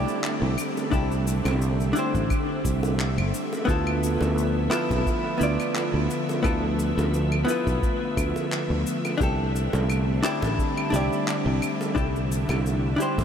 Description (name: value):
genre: sunset chillout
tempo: 87 BPM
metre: 4/4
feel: swing 54% on 16ths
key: unclear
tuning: A4 = 440 Hz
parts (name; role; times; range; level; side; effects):
- vintage hollow-body jazz guitar; accompaniment; 0.0-13.2 s; B3 to D5; -27 LUFS; equal; auto-pan, diffuse ambient delay
- soft string machine; sustained chords; 0.0-13.2 s; D3 to E5; -29 LUFS; equal; ensemble chorus
- sustaining fretless electric bass; bass; 0.0-13.2 s; G1 to D2; -25 LUFS; equal; none
- electronic cabasa, handclaps and claves; drums; 0.1-13.2 s; none; -35 LUFS; left 1 dB; overdrive
- bongos; percussion; 0.8-13.2 s; none; -37 LUFS; right 2 dB; none
- electronic kick drum; drums; 0.9-13.2 s; none; -28 LUFS; equal; none
room: moderate huge ambient reverb, RT60 7.7 s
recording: dreamy mix soaked in reverb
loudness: -22 LUFS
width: side -8 dB against mid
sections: 0.0-13.2 A section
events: none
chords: 0.0 C69; 3.7 Dm69; 9.2 C69